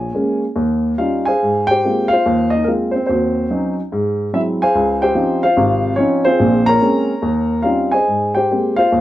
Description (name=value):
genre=solo jazz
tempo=144 BPM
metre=4/4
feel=swing 66% on 8ths, rubato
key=unclear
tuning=A4 = 439 Hz
part: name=dark upright piano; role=solo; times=0.0-9.0 s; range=Ab1 to Bb5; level=-14 LUFS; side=equal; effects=none
room=moderate club reverb, RT60 0.7 s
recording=none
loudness=-14 LUFS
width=side -14 dB against mid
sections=0.0-1.4 A section; 1.4-9.0 B section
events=none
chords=0.0 Bbm7; 0.6 Eb7; 1.4 Ab69; 3.1 Ebm7; 3.9 Abaug7; 4.7 Dbmaj9; 6.4 Bbm9; 7.2 Eb13; 8.1 Abmaj9